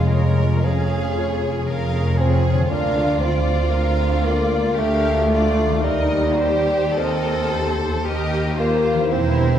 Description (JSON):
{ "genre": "classical, slow romantic movement for symphony orchestra", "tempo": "51-60 BPM", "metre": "3/4", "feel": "rubato", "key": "unclear", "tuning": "A4 = 439 Hz", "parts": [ { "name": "rich studio violin section", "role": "melody", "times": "0.0-9.6 s", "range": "Bb4 to F5", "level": "-31 LUFS", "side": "left 4 dB", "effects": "none" }, { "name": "rich chamber violin section", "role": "second line", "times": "0.0-9.6 s", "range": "Eb4 to Bb4", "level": "-27 LUFS", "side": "left 1 dB", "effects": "none" }, { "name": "mellow bassoon", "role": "accompaniment", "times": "0.0-9.6 s", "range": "G3 to D4", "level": "-22 LUFS", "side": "right 1 dB", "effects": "none" }, { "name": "warm chamber viola section", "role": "accompaniment", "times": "0.0-9.6 s", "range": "Db4 to D5", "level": "-29 LUFS", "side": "equal", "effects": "none" }, { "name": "concert harp", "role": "arpeggios", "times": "0.0-9.6 s", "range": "D3 to D5", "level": "-31 LUFS", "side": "left 5 dB", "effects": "none" }, { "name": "rich chamber double bass section", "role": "bass", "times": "0.0-9.6 s", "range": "E1 to Eb2", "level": "-22 LUFS", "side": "equal", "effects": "none" }, { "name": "warm chamber cello section", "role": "bass", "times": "0.0-9.6 s", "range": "D2 to F2", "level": "-25 LUFS", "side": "right 1 dB", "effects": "none" } ], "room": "wet scoring stage reverb, RT60 1.7 s", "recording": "heard from further back in the room", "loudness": "-17 LUFS", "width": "side -10 dB against mid", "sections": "0.0-9.6 A section", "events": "none", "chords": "0.0 Db/F; 2.7 Bb/D; 5.8 Cm7/Eb", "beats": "0.65 1.69 | 2.71 3.73 4.78 | 5.84 6.98 8.06 | 9.12" }